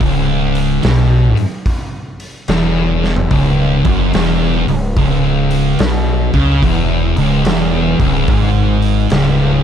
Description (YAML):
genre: stoner and doom metal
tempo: 72 BPM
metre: 4/4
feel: swing 66% on 8ths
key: C# minor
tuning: A4 = 441 Hz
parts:
  - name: thick fuzz guitar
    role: riff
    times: 0.0-9.6 s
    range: C#2 to C#3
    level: -16 LUFS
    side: left 9 dB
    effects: distortion
  - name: thick fuzz guitar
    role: riff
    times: 0.0-9.6 s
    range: C#2 to C#3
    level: -16 LUFS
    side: right 9 dB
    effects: distortion
  - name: gritty driven synth bass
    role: bass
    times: 0.0-9.6 s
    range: C#1 to C#2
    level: -17 LUFS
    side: equal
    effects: overdrive
  - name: raw garage drum kit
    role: drums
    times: 0.0-9.4 s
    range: hi-hat, kick drum, snare drum, toms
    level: -19 LUFS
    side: equal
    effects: none
room: little or no reverb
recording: dark, warm production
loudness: -11 LUFS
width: side -8 dB against mid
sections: 0.0-9.6 A section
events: drum fill 2.9-3.3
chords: 0.0 C#m